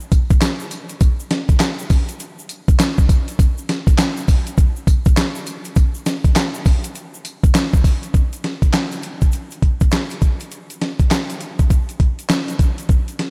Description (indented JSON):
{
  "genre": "R&B",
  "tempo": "101 BPM",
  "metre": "4/4",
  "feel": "swing 62% on 16ths",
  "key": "none",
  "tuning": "none",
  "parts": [
    { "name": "egg shaker", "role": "percussion", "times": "0.0-13.2 s", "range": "none", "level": "-41 LUFS", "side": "equal", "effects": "none" },
    { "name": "dusty soul sampler-style drum kit", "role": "drums", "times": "0.1-13.3 s", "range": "handclaps, hi-hat, kick drum, snare drum, tambourine", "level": "-18 LUFS", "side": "equal", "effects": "none" }
  ],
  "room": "light reverb",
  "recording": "none",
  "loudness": "-18 LUFS",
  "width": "mono",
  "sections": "0.0-8.1 A section; 8.1-13.3 B section",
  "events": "none",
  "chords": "none"
}